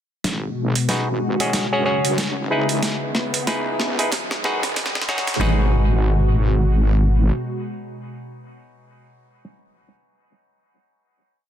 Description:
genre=glitch hop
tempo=93 BPM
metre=4/4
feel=swing 59% on 16ths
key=G# minor pentatonic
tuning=A4 = 441 Hz
part: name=warm analog pad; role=sustained chords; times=0.2-8.7 s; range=B2 to F#4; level=-26 LUFS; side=equal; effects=chorus, vintage 12-bit sampler grit, sidechain pumping
part: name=wobble bass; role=bass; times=0.2-7.3 s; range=E1 to F#2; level=-20 LUFS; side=equal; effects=chorus, tube saturation, high-pass filter
part: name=boom bap sampler-style drum kit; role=drums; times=0.2-5.5 s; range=hi-hat, snare drum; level=-24 LUFS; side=right 1 dB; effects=overdrive, studio reverb
part: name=pop drum kit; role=drums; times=0.2-5.6 s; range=kick drum, snare drum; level=-31 LUFS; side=equal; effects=none
part: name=riser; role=sound effects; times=1.8-5.4 s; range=none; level=-33 LUFS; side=right 1 dB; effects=none
part: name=bright clav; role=stabs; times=0.9-9.4 s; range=C#4 to D#5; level=-24 LUFS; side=equal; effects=auto-wah, sidechain pumping, low-pass filter, dub echo
room=light reverb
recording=dense, heavily limited modern master, high-pass filter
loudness=-18 LUFS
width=side -10 dB against mid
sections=0.2-5.4 build; 5.4-8.0 final chord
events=build-up 0.2-5.4; drum fill 0.2-5.4; filter sweep on clav 0.2-5.4; filter sweep 0.2-5.4; riser 1.8-5.4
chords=0.2 G#m7; 1.5 F#sus2; 2.8 C#m7; 4.1 Emaj7; 5.4 G#m7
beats=| 0.25 0.89 1.54 2.18 | 2.83 3.47 4.12 4.76 | 5.41 6.05 6.70 7.34

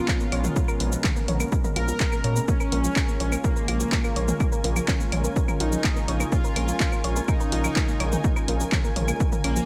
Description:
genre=melodic techno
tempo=125 BPM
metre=4/4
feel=straight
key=Bb phrygian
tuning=A4 = 440 Hz
part: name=soft supersaw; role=melody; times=0.0-9.7 s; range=Bb3 to Bb4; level=-34 LUFS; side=equal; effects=lush chorus, sidechain pumping, digital delay
part: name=lush unison pad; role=sustained chords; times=0.0-9.7 s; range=Cb3 to Bb4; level=-36 LUFS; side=equal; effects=chorus, vintage 12-bit sampler grit, sidechain pumping
part: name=dark studio string section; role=texture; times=0.0-9.7 s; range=Cb4 to Ab5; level=-38 LUFS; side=equal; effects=sidechain pumping
part: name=soft round pluck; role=arpeggios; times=0.1-9.6 s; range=F3 to Db6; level=-35 LUFS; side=equal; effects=chorus, sidechain pumping, tape echo
part: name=electronic kick drum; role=drums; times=0.1-9.3 s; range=none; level=-27 LUFS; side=equal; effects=none
part: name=punchy analog drum machine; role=drums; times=0.1-9.7 s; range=claves, handclaps, hi-hat, shaker, toms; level=-32 LUFS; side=equal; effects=none
part: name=gritty driven synth bass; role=bass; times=0.3-9.6 s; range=Bb1 to Bb2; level=-28 LUFS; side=equal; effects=sidechain pumping
room=little or no reverb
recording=none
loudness=-24 LUFS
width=mono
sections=0.0-9.7 A section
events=none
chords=0.0 Abmadd9/Bb; 2.5 Bbm7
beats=0.08 | 0.56 1.04 1.52 2.00 | 2.48 2.96 3.44 3.92 | 4.40 4.88 5.36 5.84 | 6.32 6.80 7.28 7.76 | 8.24 8.72 9.20

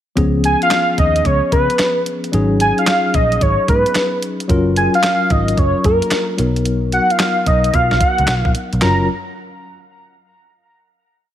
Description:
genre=R&B, new jack swing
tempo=111 BPM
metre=4/4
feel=swing 66% on 16ths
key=F# major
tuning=A4 = 440 Hz
part: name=tine electric piano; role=accompaniment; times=0.2-9.1 s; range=E#3 to A#4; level=-20 LUFS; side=left 3 dB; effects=medium tremolo
part: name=vintage muted picked electric bass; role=bass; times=0.2-9.1 s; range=F#1 to C#3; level=-18 LUFS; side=equal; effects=none
part: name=clean 12-bit digital drum machine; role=drums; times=0.2-9.0 s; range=handclaps, hi-hat, kick drum, snare drum, toms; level=-19 LUFS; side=right 1 dB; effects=none
part: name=wide unison lead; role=melody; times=0.5-9.1 s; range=A#4 to A#5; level=-16 LUFS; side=equal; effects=none
room=light reverb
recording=none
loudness=-13 LUFS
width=side -11 dB against mid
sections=0.2-8.8 verse; 8.8-11.0 final chord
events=none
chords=0.2 C#7; 2.3 G#7sus4; 4.5 F#maj7; 6.4 Bmaj7; 8.8 F#maj7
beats=| 0.17 0.71 1.25 1.79 | 2.33 2.87 3.41 3.95 | 4.49 5.03 5.57 6.11 | 6.65 7.20 7.74 8.28 | 8.82

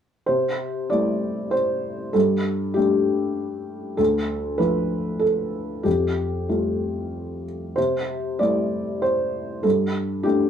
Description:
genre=neoclassical minimalist piano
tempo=97 BPM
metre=3/4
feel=rubato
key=C major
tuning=A4 = 439 Hz
part: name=felt-muted upright piano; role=solo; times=0.3-10.5 s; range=D2 to D5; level=-21 LUFS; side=equal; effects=none
room=wet studio reverb, RT60 0.5 s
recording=band playing live in one room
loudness=-21 LUFS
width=side -8 dB against mid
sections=0.3-10.5 A section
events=none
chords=0.3 C6; 2.1 Gsus2; 4.0 Dm; 5.9 Fadd9; 7.8 C6; 9.6 Gsus2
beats=| 0.28 0.91 1.52 | 2.15 2.77 3.38 | 3.99 4.60 5.22 | 5.86 6.49 7.13 | 7.77 8.40 9.03 | 9.65 10.26

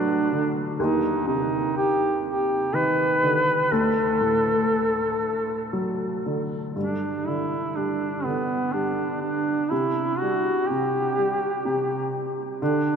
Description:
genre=celtic folk, Celtic slow air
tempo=62 BPM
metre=3/4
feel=rubato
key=G major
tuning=A4 = 445 Hz
part: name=warm duduk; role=melody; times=0.0-13.0 s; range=B3 to B4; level=-23 LUFS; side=right 1 dB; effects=none
part: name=warm upright piano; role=accompaniment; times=0.0-13.0 s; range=D2 to G3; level=-27 LUFS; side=equal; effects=none
room=wet cathedral reverb, RT60 5.7 s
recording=recorded in a church or concert hall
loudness=-22 LUFS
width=side -7 dB against mid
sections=0.0-6.8 A section; 6.8-13.0 B section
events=none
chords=0.0 D; 0.8 Cmadd9/Eb; 3.7 D; 6.8 G5; 9.7 C5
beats=| 0.79 1.75 2.73 | 3.70 4.69 5.72 | 6.76 7.76 8.74 | 9.71 10.69 11.64 | 12.60

